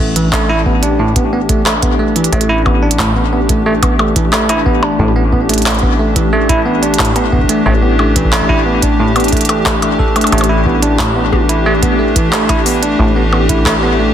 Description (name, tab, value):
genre	IDM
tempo	90 BPM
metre	4/4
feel	straight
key	unclear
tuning	A4 = 438 Hz
part	hollow soft pad	sustained chords	0.0-14.1 s	E3 to G4	-16 LUFS	left 1 dB	chorus
part	bell-like tine electric piano	arpeggios	0.0-14.1 s	A2 to A4	-15 LUFS	right 2 dB	vintage 12-bit sampler grit, ping-pong delay
part	deep acid bass	bass	0.0-14.1 s	A1	-18 LUFS	equal	none
part	glitchy drum kit	drums	0.2-13.8 s	handclaps, hi-hat, percussion blips, toms	-17 LUFS	equal	overdrive, ping-pong delay
part	electronic kick drum	drums	0.3-13.8 s	none	-18 LUFS	equal	none
room	light reverb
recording	dense, heavily limited modern master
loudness	-10 LUFS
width	side -10 dB against mid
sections	0.0-14.1 A section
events	none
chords	0.0 Em7/A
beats	0.33 0.99 1.66 | 2.33 2.99 3.66 4.33 | 4.99 5.66 6.33 6.99 | 7.66 8.33 8.99 9.66 | 10.33 10.99 11.66 12.33 | 12.99 13.66